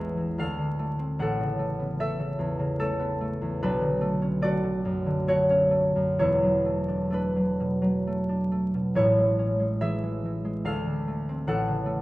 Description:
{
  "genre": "classical, solo harp piece",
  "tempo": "63-76 BPM",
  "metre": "3/4",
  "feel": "rubato",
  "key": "A major",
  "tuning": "A4 = 443 Hz",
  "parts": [
    { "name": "concert harp", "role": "solo", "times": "0.0-12.0 s", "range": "E1 to F#5", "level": "-24 LUFS", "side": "equal", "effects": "none" }
  ],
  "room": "wet recital hall reverb, RT60 1.8 s",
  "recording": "vinyl crackle",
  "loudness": "-24 LUFS",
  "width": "side -18 dB against mid",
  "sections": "0.0-12.0 A section",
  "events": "none",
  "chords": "0.4 Dm9; 1.2 Aadd9; 3.6 Bm9; 6.2 E9sus4; 9.0 Amaj7; 10.7 Dm9; 11.5 A"
}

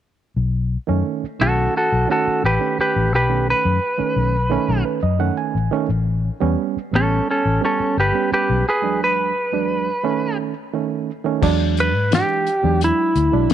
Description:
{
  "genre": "straight-eighth soul blues",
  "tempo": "87 BPM",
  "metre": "4/4",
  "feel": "straight",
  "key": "unclear",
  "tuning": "A4 = 440 Hz",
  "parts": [
    { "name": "vintage muted fingered electric bass", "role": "bass", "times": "0.4-13.5 s", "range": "G1 to G#2", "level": "-20 LUFS", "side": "left 2 dB", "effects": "none" },
    { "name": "barky reed electric piano", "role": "accompaniment", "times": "0.9-13.5 s", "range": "E2 to G#5", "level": "-23 LUFS", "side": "right 10 dB", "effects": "none" },
    { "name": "clean lap steel guitar", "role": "melody", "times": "1.4-13.5 s", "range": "C#4 to B4", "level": "-19 LUFS", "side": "equal", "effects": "none" },
    { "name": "cloth-damped thuddy drum kit", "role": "drums", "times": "11.4-13.5 s", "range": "crash cymbal, hi-hat, kick drum, snare drum", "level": "-23 LUFS", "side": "left 7 dB", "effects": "none" }
  ],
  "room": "light reverb, studio reverb",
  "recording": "1960s-style stereo with parts hard left and right",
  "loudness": "-17 LUFS",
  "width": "side -10 dB against mid",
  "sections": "0.4-11.4 A section; 11.4-13.5 B section",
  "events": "reed electric piano fill 4.5-5.9; break 8.7-11.4",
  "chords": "0.4 B7; 5.9 A7; 8.7 E7; 10.0 A; 11.4 E9"
}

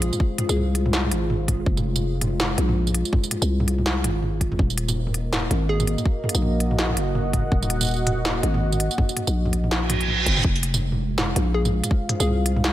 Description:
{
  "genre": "half-time drum and bass",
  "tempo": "164 BPM",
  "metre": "4/4",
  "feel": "swing 59% on 16ths, half-time",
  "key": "F phrygian",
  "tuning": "A4 = 440 Hz",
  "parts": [
    { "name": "hollow square pluck", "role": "melody", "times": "0.0-0.8, 5.7-5.9, 11.5-12.5 s", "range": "Ab4", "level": "-31 LUFS", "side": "left 1 dB", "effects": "chorus, dub echo" },
    { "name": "dark analog pad", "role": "sustained chords", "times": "0.0-12.7 s", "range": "Ab3 to Gb5", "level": "-29 LUFS", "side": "right 1 dB", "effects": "chorus, sidechain pumping" },
    { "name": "growling 808-style bass", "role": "bass", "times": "0.0-12.7 s", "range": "Eb1 to C2", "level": "-23 LUFS", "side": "equal", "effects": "none" },
    { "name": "industrial drum kit", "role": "drums", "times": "0.0-12.7 s", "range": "hi-hat, snare drum, tambourine, toms", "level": "-25 LUFS", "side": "equal", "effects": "none" },
    { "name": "electronic kick drum", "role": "drums", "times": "0.2-12.0 s", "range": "none", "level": "-22 LUFS", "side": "equal", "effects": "none" },
    { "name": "reverse cymbal", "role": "sound effects", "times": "9.9-10.4 s", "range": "none", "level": "-24 LUFS", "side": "right 4 dB", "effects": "none" }
  ],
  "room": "light reverb, digital ambience",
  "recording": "none",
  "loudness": "-20 LUFS",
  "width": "side -14 dB against mid",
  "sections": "0.0-12.7 A section",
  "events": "reverse cymbal 9.9-10.4",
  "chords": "0.0 Fm; 4.6 Ebm; 10.4 Fm"
}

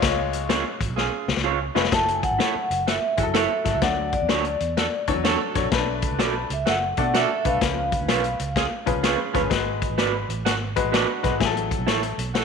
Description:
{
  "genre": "uptempo 1960s-style soul",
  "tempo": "127 BPM",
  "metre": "4/4",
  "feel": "swing 65% on 8ths",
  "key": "F# minor",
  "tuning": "A4 = 440 Hz",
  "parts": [
    { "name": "bright grand piano", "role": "accompaniment", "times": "0.0-12.2 s", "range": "E3 to D5", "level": "-27 LUFS", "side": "left 9 dB", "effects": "none" },
    { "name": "vintage muted fingered electric bass", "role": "bass", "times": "0.0-12.4 s", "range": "E#1 to B2", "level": "-30 LUFS", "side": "right 2 dB", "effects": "none" },
    { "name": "vintage drum kit", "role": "drums", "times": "0.0-12.4 s", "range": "hi-hat, kick drum, snare drum", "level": "-25 LUFS", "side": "left 4 dB", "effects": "none" },
    { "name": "electric guitar through a small old amp", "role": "stabs", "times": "0.5-12.0 s", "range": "D4 to D5", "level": "-27 LUFS", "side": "right 12 dB", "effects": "none" },
    { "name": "clear horn section", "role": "second line", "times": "1.0-12.4 s", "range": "B3 to A4", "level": "-29 LUFS", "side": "right 12 dB", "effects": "none" },
    { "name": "vibraphone with medium mallets", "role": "melody", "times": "1.9-8.8 s", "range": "D5 to A5", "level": "-25 LUFS", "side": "equal", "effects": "none" }
  ],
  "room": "moderate echo chamber reverb, RT60 1.4 s, small room ambience",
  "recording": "1960s-style stereo with parts hard left and right",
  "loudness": "-20 LUFS",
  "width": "side -6 dB against mid",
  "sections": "0.0-1.9 A section; 1.9-12.4 B section",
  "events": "drum fill 1.0-1.9",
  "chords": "0.0 C#; 1.9 F#m7; 3.8 Dmaj7; 5.7 Bm7; 7.6 C#7; 9.5 G#m7b5; 11.4 F#m7/A"
}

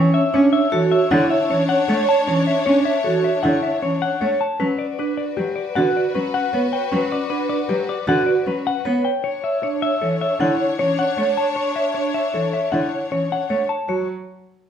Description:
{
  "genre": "classical, minimalist pattern music",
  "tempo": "155 BPM",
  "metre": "6/4",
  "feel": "straight",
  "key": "unclear",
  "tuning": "A4 = 441 Hz",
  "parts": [
    { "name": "clean electric guitar", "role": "melody", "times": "0.0-14.1 s", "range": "G4 to A5", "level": "-23 LUFS", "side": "left 5 dB", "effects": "none" },
    { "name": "mellow wooden-headed alto flute", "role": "second line", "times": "0.0-13.6 s", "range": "B4 to C#5", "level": "-25 LUFS", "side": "right 1 dB", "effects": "none" },
    { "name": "rich cello", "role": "accompaniment", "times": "0.0-14.1 s", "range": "D3 to C#4", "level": "-22 LUFS", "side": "right 1 dB", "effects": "none" },
    { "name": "rich symphonic string section", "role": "sustained chords", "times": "0.0-13.6 s", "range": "D4 to C#5", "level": "-28 LUFS", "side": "left 3 dB", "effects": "none" },
    { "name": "vibraphone with medium hard mallets", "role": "arpeggios", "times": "0.0-14.1 s", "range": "C#4 to C#5", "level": "-22 LUFS", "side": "right 4 dB", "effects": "none" }
  ],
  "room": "moderate large studio reverb, RT60 0.9 s",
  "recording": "heard from further back in the room",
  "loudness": "-17 LUFS",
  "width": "side -8 dB against mid",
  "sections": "0.0-13.9 A section",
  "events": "none",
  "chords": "0.0 Dmaj7; 4.6 Gmaj7; 9.2 Dmaj7; 13.9 F#5"
}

